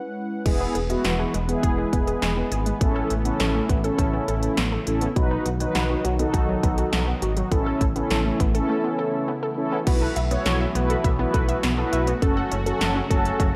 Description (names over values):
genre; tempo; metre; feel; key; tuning
synth-pop; 102 BPM; 4/4; straight; B mixolydian; A4 = 440 Hz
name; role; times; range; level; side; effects
sweeping resonant pad; sustained chords; 0.0-13.6 s; B2 to F#5; -32 LUFS; equal; chorus
mellow synth brass; accompaniment; 0.5-13.4 s; B3 to C#5; -28 LUFS; equal; chorus
unison pluck; arpeggios; 0.5-13.5 s; F#3 to F#5; -33 LUFS; equal; slapback echo
smooth synth bass; bass; 0.5-13.6 s; E1 to B1; -29 LUFS; equal; none
house drum kit; drums; 0.5-13.5 s; crash cymbal, hi-hat, kick drum, snare drum; -28 LUFS; equal; gated reverb
room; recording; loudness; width
light reverb; none; -23 LUFS; mono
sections
0.5-9.9 A section; 9.9-13.6 B section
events
break 0.0-0.5, 8.7-9.9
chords
0.5 E; 2.8 Aadd9; 5.2 B; 7.5 Aadd9; 9.9 B7sus4; 12.2 F#m